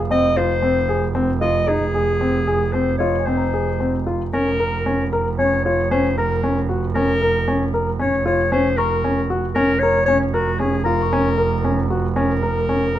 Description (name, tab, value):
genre	contemporary instrumental, chamber music in an uneven meter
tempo	115 BPM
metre	5/4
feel	straight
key	unclear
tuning	A4 = 435 Hz
part	clear double bass	bass	0.0-13.0 s	F1	-22 LUFS	right 4 dB	none
part	celesta	texture	0.0-4.5, 8.8-12.2 s	Eb5 to Db6	-29 LUFS	left 10 dB	none
part	mellow clarinet	melody	0.1-13.0 s	Gb4 to Eb5	-21 LUFS	left 2 dB	none
part	dark grand piano	arpeggios	0.1-13.0 s	C4 to Bb4	-21 LUFS	left 2 dB	none
room	light reverb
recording	close, detailed microphones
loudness	-17 LUFS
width	side -12 dB against mid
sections	0.0-13.0 A section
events	none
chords	0.0 Fm7; 4.3 Bbm/F